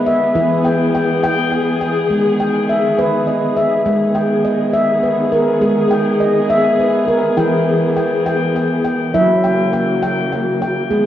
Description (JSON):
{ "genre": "world meditative, meditative tuned percussion", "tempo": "68 BPM (dotted quarters)", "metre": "6/8", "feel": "straight", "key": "unclear", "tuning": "A4 = 440 Hz", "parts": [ { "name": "dark studio string section", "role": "sustained chords", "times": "0.0-11.1 s", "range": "C#3 to G#4", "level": "-18 LUFS", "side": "left 2 dB", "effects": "none" }, { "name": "handpan", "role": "arpeggios", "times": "0.0-11.1 s", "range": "E3 to G5", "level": "-15 LUFS", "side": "equal", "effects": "none" } ], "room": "wet echo chamber reverb, RT60 1.4 s, small room ambience", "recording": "worn, warbling old tape, cassette tape, warbly pitch drift", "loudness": "-13 LUFS", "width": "side -11 dB against mid", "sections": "0.0-3.9 A section; 3.9-11.1 B section", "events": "none", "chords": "0.4 E; 2.1 G#m; 7.4 E; 9.1 F#" }